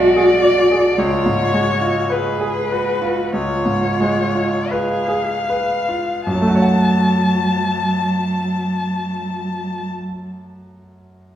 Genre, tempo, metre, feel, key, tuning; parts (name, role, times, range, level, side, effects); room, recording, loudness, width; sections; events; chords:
classical, slow romantic movement for piano trio; 36-55 BPM; 4/4; rubato; F# minor; A4 = 440 Hz
rich violin; melody; 0.0-9.9 s; B4 to A5; -21 LUFS; left 4 dB
rich cello; second line; 0.0-9.9 s; F#3 to G#4; -20 LUFS; right 1 dB
bright grand piano; accompaniment; 0.0-11.4 s; B1 to F#5; -20 LUFS; right 1 dB
wet recital hall reverb, RT60 1.8 s; heard from further back in the room; -16 LUFS; side -11 dB against mid
0.0-6.3 A section; 6.3-11.4 B section
slowing down 0.0-6.3
0.0 G#dim/B; 1.0 C#7; 6.3 F#m